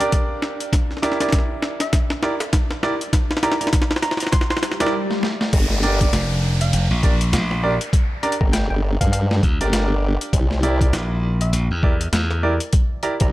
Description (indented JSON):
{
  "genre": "glitch hop",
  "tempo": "100 BPM",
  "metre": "4/4",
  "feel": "swing 60% on 16ths",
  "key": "G dorian",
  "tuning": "A4 = 440 Hz",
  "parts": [
    { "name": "warm grand piano", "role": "stabs", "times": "0.0-13.3 s", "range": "D4 to D5", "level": "-25 LUFS", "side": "right 2 dB", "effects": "sidechain pumping, digital delay" },
    { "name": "boom bap sampler-style drum kit", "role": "drums", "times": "0.0-13.3 s", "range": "crash cymbal, hi-hat, snare drum", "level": "-24 LUFS", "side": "equal", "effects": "overdrive" },
    { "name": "electronic kick drum", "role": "drums", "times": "0.1-13.3 s", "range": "none", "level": "-18 LUFS", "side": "equal", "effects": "overdrive" },
    { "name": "woody wave-folded pluck", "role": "melody", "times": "1.8-13.3 s", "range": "E5 to C6", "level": "-30 LUFS", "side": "equal", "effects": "chorus, digital delay" },
    { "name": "swell and downlifter", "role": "sound effects", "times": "4.6-10.3 s", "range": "none", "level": "-29 LUFS", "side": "equal", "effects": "none" },
    { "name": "formant-sweep wobble bass", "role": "bass", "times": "5.5-13.3 s", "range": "G1 to G2", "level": "-20 LUFS", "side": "equal", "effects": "chorus" },
    { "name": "glassy slap bass", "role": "bass", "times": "6.1-12.6 s", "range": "F1 to E2", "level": "-20 LUFS", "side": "equal", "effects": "none" }
  ],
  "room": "light reverb, digital ambience",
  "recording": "none",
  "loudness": "-17 LUFS",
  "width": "side -16 dB against mid",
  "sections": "0.0-5.5 A section; 5.5-13.3 B section",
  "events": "build-up 0.0-5.5; drum fill 0.0-4.9, 5.1-5.5; filter sweep on synth pluck 0.0-5.5; swell 4.6-5.5; stop 4.9-5.5; drop 5.5-13.3",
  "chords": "0.0 Gm; 0.7 Em7b5; 5.5 Gm; 10.3 C7",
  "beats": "0.13 | 0.73 1.33 1.93 2.53 | 3.13 3.73 4.33 4.93 | 5.53 6.13 6.73 7.33 | 7.93 8.53 9.13 9.73 | 10.33 10.93 11.53 12.13 | 12.73"
}